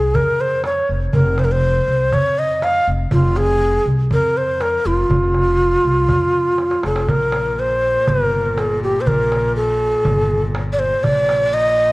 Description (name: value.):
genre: Arabic maqam ensemble.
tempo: 121 BPM.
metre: 4/4.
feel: straight.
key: F maqam bayati, Bb maqam rast from 7.1 s.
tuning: A4 = 441 Hz.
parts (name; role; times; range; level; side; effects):
breathy bright low ney; melody; 0.0-11.9 s; F4 to F5; -16 LUFS; equal; none.
upright bass; bass; 0.0-11.9 s; F1 to F2; -21 LUFS; equal; none.
darbuka; percussion; 0.1-11.4 s; none; -22 LUFS; right 1 dB; none.
rich cello; drone; 7.1-11.9 s; Bb2; -27 LUFS; equal; none.
room: moderate concert hall reverb, RT60 1.9 s.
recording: worn, warbling old tape, cassette tape, warbly pitch drift.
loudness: -15 LUFS.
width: side -21 dB against mid.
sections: 0.0-7.1 A section; 7.1-11.9 B section.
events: drum fill 6.6-7.1.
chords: none.